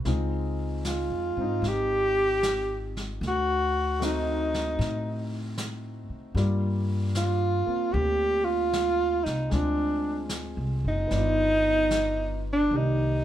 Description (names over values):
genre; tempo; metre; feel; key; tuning
jazz ballad; 76 BPM; 4/4; swing 68% on 8ths; unclear; A4 = 440 Hz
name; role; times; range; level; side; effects
warm concert grand piano; accompaniment; 0.0-13.2 s; Eb3 to D5; -34 LUFS; left 3 dB; none
upright bass; bass; 0.0-13.2 s; F#1 to A2; -29 LUFS; equal; none
vintage brush drum kit; drums; 0.1-13.2 s; brushed snare drum, hi-hat, snare drum; -38 LUFS; equal; none
mellow alto saxophone; melody; 0.9-13.2 s; D4 to G4; -25 LUFS; right 1 dB; none
room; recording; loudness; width
moderate studio ambience, RT60 0.5 s; heard from further back in the room; -24 LUFS; side -12 dB against mid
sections
0.0-12.7 A section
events
none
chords
0.1 Dbmaj7; 3.2 D7b9; 6.4 Gm7; 9.5 Dm7b5; 11.1 G7b13; 12.7 Cm9